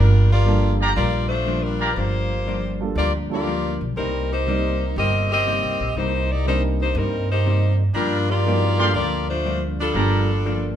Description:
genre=jazz, big band swing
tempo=120 BPM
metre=4/4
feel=swing 69% on 8ths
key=G minor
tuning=A4 = 441 Hz
part: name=warm saxophone section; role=melody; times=0.0-10.8 s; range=G3 to Eb5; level=-23 LUFS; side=left 2 dB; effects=none
part: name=vintage hollow-body jazz guitar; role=accompaniment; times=0.0-10.8 s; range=G2 to Eb4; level=-28 LUFS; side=left 3 dB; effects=none
part: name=upright bass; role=bass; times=0.0-10.7 s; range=G1 to G2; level=-21 LUFS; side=right 1 dB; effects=none
part: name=dark grand piano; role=accompaniment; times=0.5-10.3 s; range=G3 to D5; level=-29 LUFS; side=right 6 dB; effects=none
part: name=clear trumpet section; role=stabs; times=0.8-1.9, 7.9-10.2 s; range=G4 to C6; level=-26 LUFS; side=equal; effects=none
room=wet large studio reverb, RT60 1.1 s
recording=minimal, uncompressed stereo recording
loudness=-18 LUFS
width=side -10 dB against mid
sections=0.0-10.8 A section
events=none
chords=0.0 Gm7; 4.0 Cm7; 7.9 Gm7

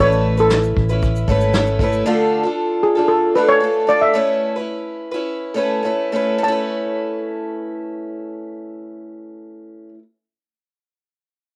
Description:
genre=acoustic pop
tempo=99-117 BPM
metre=4/4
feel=straight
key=A major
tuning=A4 = 441 Hz
part: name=steel pan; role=melody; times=0.0-9.9 s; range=G#4 to A5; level=-19 LUFS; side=equal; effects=cassette tape
part: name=picked twelve-string acoustic guitar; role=accompaniment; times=0.0-10.0 s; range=D3 to B4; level=-22 LUFS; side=equal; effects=cassette tape
part: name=vintage muted fingered electric bass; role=bass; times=0.0-2.0 s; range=G#1 to A1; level=-22 LUFS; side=equal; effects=none
part: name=vintage brush drum kit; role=drums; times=0.1-2.0 s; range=kick drum, shaker, snare drum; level=-24 LUFS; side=equal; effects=none
room=moderate studio reverb, RT60 0.6 s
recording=home recording on cassette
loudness=-18 LUFS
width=mono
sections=0.0-6.4 A section; 6.4-11.3 B section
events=slowing down 2.0-6.4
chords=0.0 Aadd9; 2.0 Dm; 4.1 Aadd9

